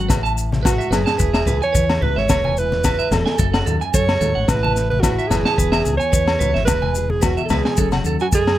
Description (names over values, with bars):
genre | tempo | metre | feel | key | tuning
highlife guitar band | 109 BPM | 4/4 | swing 54% on 16ths | E major | A4 = 441 Hz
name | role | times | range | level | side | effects
warm alto saxophone | melody | 0.0-8.6 s | F#4 to C#5 | -21 LUFS | right 3 dB | none
nylon-string guitar | accompaniment | 0.0-8.6 s | E2 to G#4 | -27 LUFS | left 6 dB | none
clean electric guitar | arpeggios | 0.0-8.4 s | A4 to A5 | -25 LUFS | right 7 dB | spring reverb, slapback echo
fingered electric bass | bass | 0.0-8.6 s | E1 to F#2 | -22 LUFS | equal | none
crunchy breakbeat drum kit | drums | 0.1-8.6 s | kick drum, snare drum | -21 LUFS | equal | none
agogo bells | percussion | 0.1-8.6 s | none | -27 LUFS | left 10 dB | none
congas | percussion | 0.1-8.0 s | none | -27 LUFS | left 2 dB | none
maracas | percussion | 0.1-8.5 s | none | -29 LUFS | left 6 dB | none
room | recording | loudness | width
little or no reverb | none | -16 LUFS | side -13 dB against mid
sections
0.0-8.6 A section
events
none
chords
0.1 Asus2; 1.2 E; 3.4 F#madd9; 4.5 Asus2; 5.6 E; 7.8 F#madd9